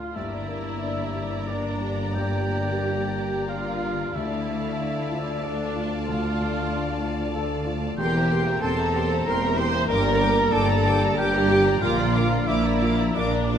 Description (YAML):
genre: cinematic, emotional film score for orchestra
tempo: 93 BPM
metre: 3/4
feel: rubato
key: unclear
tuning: A4 = 440 Hz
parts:
  - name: mellow concert flute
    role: second line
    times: 0.0-13.6 s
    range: D5 to C6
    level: -33 LUFS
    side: left 2 dB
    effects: none
  - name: warm oboe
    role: second line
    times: 0.0-13.6 s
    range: D5 to C6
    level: -32 LUFS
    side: right 1 dB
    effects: none
  - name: rich studio viola section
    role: accompaniment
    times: 0.0-13.6 s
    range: D4 to C5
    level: -28 LUFS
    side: right 2 dB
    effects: none
  - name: warm grand piano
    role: accompaniment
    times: 0.0-13.6 s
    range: D2 to G5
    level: -31 LUFS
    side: left 2 dB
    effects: none
  - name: concert harp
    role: arpeggios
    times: 0.0-13.6 s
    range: G2 to D5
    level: -33 LUFS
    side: left 7 dB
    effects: none
  - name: warm symphonic violin section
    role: melody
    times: 0.2-13.6 s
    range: A5 to D6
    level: -34 LUFS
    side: left 3 dB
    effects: none
  - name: warm symphonic violin section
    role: second line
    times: 0.2-13.6 s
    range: Bb4 to Bb5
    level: -34 LUFS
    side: left 2 dB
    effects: none
  - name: dark French horn section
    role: sustained chords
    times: 0.2-13.6 s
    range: A3 to D4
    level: -32 LUFS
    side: left 4 dB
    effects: none
  - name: rich symphonic cello section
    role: bass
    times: 0.2-13.6 s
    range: D2 to Bb2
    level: -30 LUFS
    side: right 3 dB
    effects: none
  - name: rich symphonic double bass section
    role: bass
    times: 0.2-13.6 s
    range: E1 to D2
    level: -29 LUFS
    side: right 3 dB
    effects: none
room: wet recital hall reverb, RT60 1.6 s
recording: none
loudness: -21 LUFS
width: side -8 dB against mid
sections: 0.2-13.6 A section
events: none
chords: 0.2 Gm; 4.1 Dmadd9; 8.0 C7/E; 9.9 Gm; 11.8 Bb